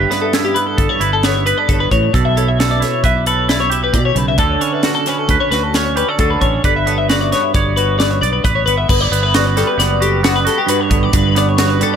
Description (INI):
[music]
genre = math rock and midwest emo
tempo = 133 BPM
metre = 5/4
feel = straight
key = G lydian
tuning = A4 = 441 Hz
[part]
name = twangy electric guitar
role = accompaniment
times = 0.0-12.0 s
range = G2 to D5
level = -18 LUFS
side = right 8 dB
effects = analog chorus
[part]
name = twelve-string electric guitar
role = arpeggios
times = 0.0-12.0 s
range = F#4 to E5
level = -17 LUFS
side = left 8 dB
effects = wide subtle chorus, analog delay
[part]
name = fingered electric bass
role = bass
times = 0.0-11.8 s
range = F#1 to B2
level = -19 LUFS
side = equal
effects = none
[part]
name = crisp fusion drum kit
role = drums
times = 0.1-11.9 s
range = crash cymbal, hi-hat, kick drum, snare drum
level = -18 LUFS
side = equal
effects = none
[sound]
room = light reverb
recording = none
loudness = -12 LUFS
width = side -8 dB against mid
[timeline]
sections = 0.0-8.9 A section; 8.9-12.0 B section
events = none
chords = 0.0 G6; 2.1 B7sus4; 4.4 Dmaj7; 6.6 Gmaj7